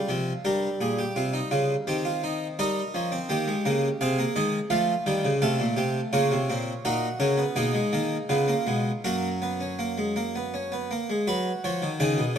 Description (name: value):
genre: classical, baroque-style 4-part fugue for harpsichord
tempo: 84 BPM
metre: 3/4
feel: straight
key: F# major from 6.8 s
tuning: A4 = 438 Hz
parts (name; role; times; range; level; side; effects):
- harpsichord; solo; 0.0-12.4 s; F#2 to G5; -24 LUFS; equal; none
room: moderate scoring stage reverb, RT60 1.9 s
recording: close, detailed microphones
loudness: -24 LUFS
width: side -8 dB against mid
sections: 0.0-11.3 A section; 11.3-12.4 B section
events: none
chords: 0.5 Gdim; 1.9 Cm/Eb; 2.6 Eb7; 4.0 Ab/C; 4.7 F7; 6.1 Bbm; 6.8 F#/A#; 7.6 G#m/B; 8.3 C#7; 9.0 F#; 11.3 F#5